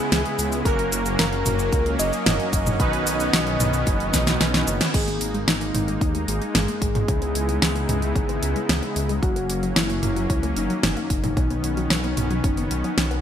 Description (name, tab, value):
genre	synthwave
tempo	112 BPM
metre	4/4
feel	straight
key	G# minor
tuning	A4 = 440 Hz
part	soft octave-layered synth lead	melody	0.0-13.2 s	D#4 to D#5	-29 LUFS	left 2 dB	chorus, digital delay
part	FM electric piano with soft pad layer	second line	0.0-4.8 s	G#4 to D#5	-32 LUFS	equal	none
part	soft supersaw	sustained chords	0.0-13.2 s	C#3 to D#5	-28 LUFS	equal	analog chorus, sidechain pumping
part	analog synth brass	stabs	0.0-4.9 s	A#3 to B4	-28 LUFS	right 4 dB	chorus, digital delay
part	dark detuned saw bass	bass	0.1-13.2 s	F#1 to D#2	-26 LUFS	equal	none
part	pop drum kit	drums	0.1-13.2 s	cabasa, crash cymbal, hi-hat, snare drum, toms	-24 LUFS	equal	none
part	electronic kick drum	drums	0.7-12.5 s	none	-24 LUFS	equal	none
part	analog pluck	arpeggios	4.9-13.2 s	F#3 to D#4	-33 LUFS	left 2 dB	none
room	light reverb, digital ambience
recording	bright 1980s-style digital production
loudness	-20 LUFS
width	side -9 dB against mid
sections	0.0-4.9 A section; 4.9-13.2 B section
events	drum fill 4.1-4.9; band accent 4.8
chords	0.0 C#m7; 0.7 F#; 2.8 Badd9; 4.9 G#sus2; 7.1 C#m7; 9.2 F#; 11.4 Badd9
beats	0.12 | 0.66 1.19 1.73 2.26 | 2.80 3.33 3.87 4.41 | 4.94 5.48 6.01 6.55 | 7.08 7.62 8.16 8.69 | 9.23 9.76 10.30 10.84 | 11.37 11.91 12.44 12.98